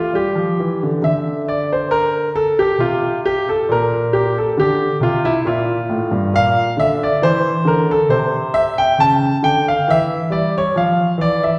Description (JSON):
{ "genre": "classical, baroque-style suite movement for grand piano", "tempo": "68 BPM", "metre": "3/4", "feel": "rubato", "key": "unclear", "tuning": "A4 = 439 Hz", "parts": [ { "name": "warm concert grand piano", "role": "solo", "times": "0.0-11.6 s", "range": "G2 to A5", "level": "-17 LUFS", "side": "equal", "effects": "none" } ], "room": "wet recital hall reverb, RT60 1.5 s", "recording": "recorded in a church or concert hall", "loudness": "-17 LUFS", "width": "mono", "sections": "0.0-11.6 A section", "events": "none", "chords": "0.0 A7(no3) (rootless); 1.0 C13; 3.7 Bb5; 6.3 Bbadd9(#11); 8.1 N.C.; 9.0 C#dim; 10.7 Dmadd9" }